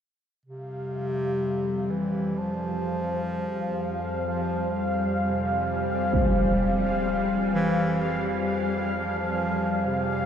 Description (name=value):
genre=dark ambient drone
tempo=64 BPM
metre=4/4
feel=straight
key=F harmonic minor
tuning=A4 = 440 Hz
part: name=warm bass clarinet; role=melody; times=0.5-10.3 s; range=C3 to F3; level=-30 LUFS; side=right 1 dB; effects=tape echo
part: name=deep dark ambient pad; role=sustained chords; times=2.9-10.3 s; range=C5 to Ab5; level=-30 LUFS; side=left 2 dB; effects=chorus, built-in reverb
part: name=bowed-like drone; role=drone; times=0.8-10.3 s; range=F2 to G3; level=-28 LUFS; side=equal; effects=built-in reverb
part: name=bubbling stepped-filter texture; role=texture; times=0.5-10.3 s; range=F5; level=-33 LUFS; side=left 1 dB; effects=chorus, built-in reverb
part: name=impact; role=percussion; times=6.1-6.3 s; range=none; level=-29 LUFS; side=right 1 dB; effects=low-pass filter on sfx
room=wet huge ambient reverb, RT60 8.9 s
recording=none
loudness=-24 LUFS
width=side -8 dB against mid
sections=0.5-10.3 A section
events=none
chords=0.5 Fmadd9